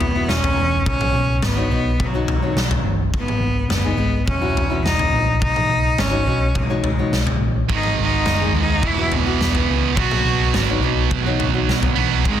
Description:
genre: quiet-loud alternative rock.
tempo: 105 BPM.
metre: 4/4.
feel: straight.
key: B major.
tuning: A4 = 439 Hz.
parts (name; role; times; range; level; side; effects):
bright cello; melody; 0.0-12.4 s; F#3 to F#4; -22 LUFS; equal; none.
fingerpicked steel-string acoustic guitar; arpeggios; 0.0-11.9 s; F#3 to C#5; -27 LUFS; left 5 dB; analog delay.
hollow-body short-scale picked electric bass; bass; 0.0-12.4 s; E1 to D#2; -22 LUFS; equal; none.
huge arena drum kit; drums; 0.0-12.4 s; kick drum, snare drum, toms; -22 LUFS; left 1 dB; none.
distorted electric guitar; riff; 7.7-12.4 s; E2 to B3; -21 LUFS; right 15 dB; overdrive.
room: little or no reverb.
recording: dense, heavily limited modern master.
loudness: -16 LUFS.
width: side -10 dB against mid.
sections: 0.0-12.4 A section.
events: none.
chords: 0.0 Esus2; 0.9 Badd9; 3.1 G#m; 4.3 Esus2; 5.4 Badd9; 7.7 G#m; 8.8 Esus2; 10.0 Badd9.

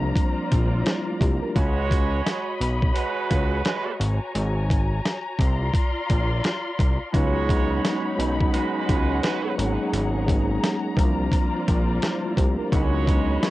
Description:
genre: hip hop, boom-bap hip-hop.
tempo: 86 BPM.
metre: 4/4.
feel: swing 62% on 16ths.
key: unclear.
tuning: A4 = 441 Hz.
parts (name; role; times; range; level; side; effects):
mellow tine electric piano; accompaniment; 0.0-1.6, 7.1-13.5 s; E3 to B4; -26 LUFS; equal; medium stereo tremolo, cassette tape, high-pass filter, low-pass filter.
warm studio string section; sustained chords; 0.0-13.5 s; D#4 to C6; -30 LUFS; left 2 dB; high-pass filter, low-pass filter.
fat analog bass; bass; 0.0-13.4 s; G#1 to C#2; -24 LUFS; equal; tube saturation.
dusty soul sampler-style drum kit; drums; 0.2-13.5 s; hi-hat, kick drum, snare drum; -23 LUFS; equal; none.
clear horn section; stabs; 1.6-13.5 s; G#3 to C#5; -30 LUFS; right 8 dB; high-pass filter, low-pass filter, analog delay.
room: little or no reverb.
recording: home recording on cassette.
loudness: -21 LUFS.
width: side -17 dB against mid.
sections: 0.0-13.5 A section.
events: none.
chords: 0.0 C9sus4; 1.6 C#9sus4; 4.0 G#9sus4; 5.4 C9sus4; 7.1 C#9sus4; 9.6 G#9sus4; 11.0 C9sus4; 12.7 C#9sus4.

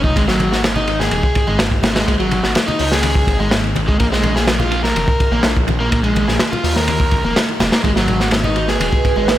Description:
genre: breakbeat, breaks.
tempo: 125 BPM.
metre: 4/4.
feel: straight.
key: G# dorian.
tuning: A4 = 440 Hz.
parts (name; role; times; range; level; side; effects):
overdriven electric guitar; riff; 0.0-9.3 s; F#3 to A#4; -19 LUFS; equal; tape echo.
phased detuned saw bass; bass; 0.0-9.4 s; D#1 to D#2; -20 LUFS; equal; phaser, tube saturation.
crunchy breakbeat drum kit; drums; 0.0-9.4 s; hi-hat, kick drum, ride cymbal, snare drum; -16 LUFS; equal; tape echo.
congas; percussion; 0.4-9.3 s; none; -27 LUFS; left 2 dB; none.
warbly tape-like pad; sustained chords; 7.8-9.4 s; G#3 to B4; -21 LUFS; right 7 dB; chorus, built-in reverb, sidechain pumping.
room: light reverb, small room reverb.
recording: echo-heavy mix.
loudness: -14 LUFS.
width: side -13 dB against mid.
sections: 0.0-9.4 A section.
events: none.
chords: 0.2 G#5; 4.0 A#5; 7.8 G#m7.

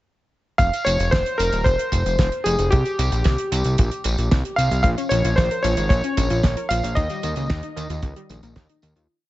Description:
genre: italo disco.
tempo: 113 BPM.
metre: 4/4.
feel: straight.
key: F minor.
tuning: A4 = 437 Hz.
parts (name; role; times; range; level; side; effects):
clear electric grand piano; melody; 0.6-8.8 s; G4 to F5; -23 LUFS; equal; ping-pong delay.
fat analog bass; bass; 0.6-9.1 s; Eb1 to Eb2; -23 LUFS; equal; none.
damped 70s drum kit; drums; 0.6-9.1 s; hi-hat, snare drum, tambourine; -27 LUFS; right 2 dB; none.
kick drum; drums; 0.6-8.7 s; none; -20 LUFS; equal; none.
wide unison pluck; arpeggios; 4.8-9.1 s; Eb3 to Db5; -28 LUFS; left 3 dB; ping-pong delay.
room: small room ambience.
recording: nothing above 7.9 kHz.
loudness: -18 LUFS.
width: side -16 dB against mid.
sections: 0.6-9.1 chorus.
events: fade-out 6.3-9.1.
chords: 0.6 F5; 2.7 C5; 4.8 Bbm; 7.0 Ebadd9.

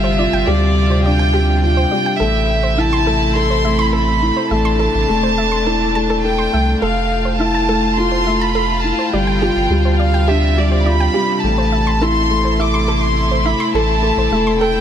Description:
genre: piano and strings electronica.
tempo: 104 BPM.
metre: 4/4.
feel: straight.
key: A minor.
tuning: A4 = 439 Hz.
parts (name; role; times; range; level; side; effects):
warm chamber violin section; melody; 0.0-14.8 s; D5 to D6; -19 LUFS; right 1 dB; shimmer reverb.
dark chamber string section; sustained chords; 0.0-14.8 s; C3 to F4; -24 LUFS; left 1 dB; shimmer reverb.
soft round pluck; arpeggios; 0.0-14.7 s; G4 to C6; -25 LUFS; right 3 dB; chorus, shimmer reverb, ping-pong delay.
felt-muted upright piano; riff; 0.0-14.8 s; G3 to A4; -19 LUFS; left 2 dB; none.
round analog bass; bass; 0.0-14.8 s; E1 to D2; -18 LUFS; right 1 dB; none.
room: moderate huge ambient reverb, RT60 7.7 s.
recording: none.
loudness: -13 LUFS.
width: side -9 dB against mid.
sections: 0.0-14.8 A section.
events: none.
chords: 0.0 G7sus4; 2.2 Am; 6.8 Fmaj7; 9.1 G7sus4; 11.4 Am.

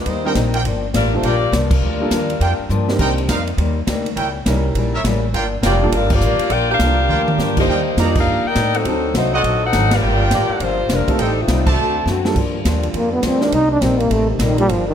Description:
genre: jazz, big band swing.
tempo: 205 BPM.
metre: 4/4.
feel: swing 63% on 8ths.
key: G minor.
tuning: A4 = 439 Hz.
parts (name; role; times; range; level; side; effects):
warm saxophone section; melody; 0.0-2.9, 5.7-12.2 s; D3 to G5; -19 LUFS; left 2 dB; none.
upright bass; bass; 0.0-14.9 s; F1 to A2; -20 LUFS; equal; none.
picked steel-string acoustic guitar; accompaniment; 0.1-14.9 s; G2 to F#4; -24 LUFS; left 6 dB; none.
swinging big-band drum kit; drums; 0.1-14.8 s; crash cymbal, hi-hat, kick drum, ride cymbal, snare drum, toms; -22 LUFS; equal; none.
warm grand piano; accompaniment; 0.2-9.0, 11.1-14.7 s; F3 to Bb4; -25 LUFS; right 4 dB; none.
clear trumpet section; stabs; 0.3-12.0 s; D4 to Bb5; -24 LUFS; right 4 dB; none.
clear trombone section; sustained chords; 12.4-14.9 s; C3 to F4; -28 LUFS; right 1 dB; none.
breathy trombone; melody; 13.0-14.9 s; C3 to Eb4; -17 LUFS; equal; none.
room: light reverb.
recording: none.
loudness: -15 LUFS.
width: side -8 dB against mid.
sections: 0.0-12.4 A section; 12.4-14.9 B section.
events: band accent 1.7, 6.1, 8.1, 9.9, 11.6; drum fill 2.7, 7.1, 12.1; trombone solo 12.4-14.9.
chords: 0.0 Cm7; 0.7 Gm7; 3.0 Cm7; 4.2 C#dim7; 5.3 Gm7; 7.7 Ebmaj7; 8.9 D7b9; 10.0 Gm7; 11.2 Am7b5; 11.8 D7; 12.4 Gm7; 13.5 Cm7.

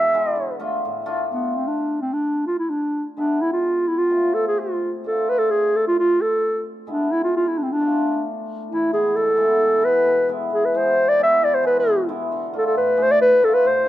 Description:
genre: klezmer.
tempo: 131 BPM.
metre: 2/4.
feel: straight.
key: D dorian sharp4.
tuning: A4 = 441 Hz.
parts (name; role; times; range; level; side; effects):
dark clarinet; melody; 0.0-13.9 s; B3 to E5; -18 LUFS; equal; none.
cimbalom; accompaniment; 0.0-13.9 s; A2 to E5; -26 LUFS; left 1 dB; none.
room: light reverb, studio reverb.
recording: rough home demo mix.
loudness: -18 LUFS.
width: side -14 dB against mid.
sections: 0.0-1.3 A section; 1.3-8.7 B section; 8.7-13.9 C section.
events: speeding up 0.0-13.9; clarinet solo 0.0-1.3.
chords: 0.4 Dm; 3.2 E; 4.1 F; 6.9 E; 7.8 Dm; 8.7 E; 12.3 Dm.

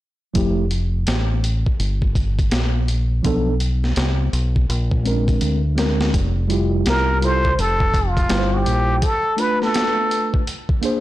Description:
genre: hip hop, jazz-hop.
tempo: 83 BPM.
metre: 4/4.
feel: swing 63% on 16ths.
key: F major.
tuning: A4 = 442 Hz.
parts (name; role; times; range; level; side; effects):
mellow tine electric piano; accompaniment; 0.3-11.0 s; F3 to C5; -23 LUFS; right 1 dB; medium stereo tremolo.
deep dub fingered electric bass; bass; 0.4-9.0 s; F1 to D2; -20 LUFS; equal; tube saturation.
boom bap sampler-style drum kit; drums; 0.4-11.0 s; hi-hat, kick drum, snare drum; -22 LUFS; equal; none.
trumpet with plunger mute; melody; 6.9-10.3 s; F4 to C5; -20 LUFS; equal; none.
room: little or no reverb.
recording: blown-out, overdriven recording, overdrive.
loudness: -17 LUFS.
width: side -15 dB against mid.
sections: 0.4-6.1 A section; 6.1-11.0 B section.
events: drum fill 5.4-6.1.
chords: 0.4 Fadd9; 3.2 Bm7b5; 4.7 Bb9; 6.1 Fmaj7sus2; 9.0 Bm7b5; 10.5 Bb9.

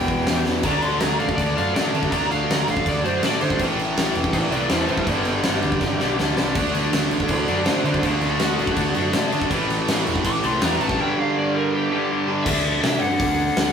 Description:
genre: punk rock.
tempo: 162 BPM.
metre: 4/4.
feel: straight.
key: unclear.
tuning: A4 = 440 Hz.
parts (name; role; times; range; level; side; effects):
lead guitar through a small cranked amp; melody; 0.0-13.7 s; A3 to D6; -26 LUFS; equal; overdrive.
distorted electric guitar; riff; 0.0-13.7 s; E2 to D4; -25 LUFS; left 3 dB; distortion.
distorted electric guitar; riff; 0.0-12.5 s; E2 to D4; -26 LUFS; right 6 dB; overdrive.
hollow-body short-scale picked electric bass; bass; 0.0-13.7 s; E1 to D3; -29 LUFS; equal; none.
big rock drum kit; drums; 0.1-13.7 s; crash cymbal, hi-hat, kick drum, snare drum; -23 LUFS; left 1 dB; none.
distorted electric guitar; riff; 6.5-13.7 s; G2 to D4; -30 LUFS; right 2 dB; distortion.
room: moderate stone room reverb, RT60 1.2 s.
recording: rough rehearsal-room recording, warm saturation.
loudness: -18 LUFS.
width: side -7 dB against mid.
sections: 0.6-12.5 A section; 12.5-13.7 B section.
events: drum fill 0.4, 5.8-6.6; lead electric guitar solo 0.6-12.5.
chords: 0.0 Em; 0.6 D5; 3.6 Am; 5.1 G; 6.6 D; 9.5 A5; 11.0 G5; 12.5 D.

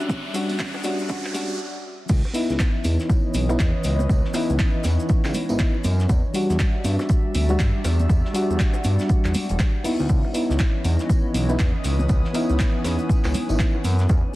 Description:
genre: deep house.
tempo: 120 BPM.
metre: 4/4.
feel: swing 60% on 16ths.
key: unclear.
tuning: A4 = 439 Hz.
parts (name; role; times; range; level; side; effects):
warbly tape-like pad; sustained chords; 0.0-14.4 s; E3 to G#5; -34 LUFS; right 1 dB; chorus, built-in reverb, sidechain pumping.
mellow FM electric piano; stabs; 0.0-13.8 s; G3 to F#4; -26 LUFS; left 1 dB; chorus, sidechain pumping, tape echo.
maracas; percussion; 0.0-14.2 s; none; -41 LUFS; left 3 dB; none.
riser; sound effects; 0.0-1.6 s; none; -34 LUFS; equal; none.
airy breathy pad; texture; 0.0-14.4 s; E3 to D#6; -33 LUFS; equal; chorus, sidechain pumping.
rich studio violin section; texture; 0.0-1.6 s; F#6; -42 LUFS; left 2 dB; sidechain pumping.
warbly dusty pluck; arpeggios; 0.1-1.4 s; C#4; -37 LUFS; equal; none.
electronic kick drum; drums; 0.1-14.2 s; none; -20 LUFS; equal; none.
congas and bongos; percussion; 0.1-14.2 s; none; -33 LUFS; right 1 dB; none.
punchy analog drum machine; drums; 0.3-14.0 s; crash cymbal, handclaps, hi-hat; -33 LUFS; equal; none.
smooth synth bass; bass; 2.1-14.2 s; E1 to G2; -22 LUFS; equal; sidechain pumping.
warm soul drum kit; drums; 2.1-14.2 s; hi-hat, snare drum, tambourine; -42 LUFS; equal; sidechain pumping on hats, high-pass filter on hats, high-pass filter on snare, sidechain pumping on perc, high-pass filter on perc, high-pass filter on room.
room: light reverb, studio reverb.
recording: dense, heavily limited modern master, vinyl crackle, high-pass filter.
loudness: -19 LUFS.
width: side -18 dB against mid.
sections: 0.0-2.1 A section; 2.1-14.4 B section.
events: build-up 0.0-2.1; riser 0.0-1.6; stop 1.6-2.1; drop 2.1-14.4.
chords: 0.0 Em9; 2.1 C#m9; 6.1 Em9; 10.1 C#m9.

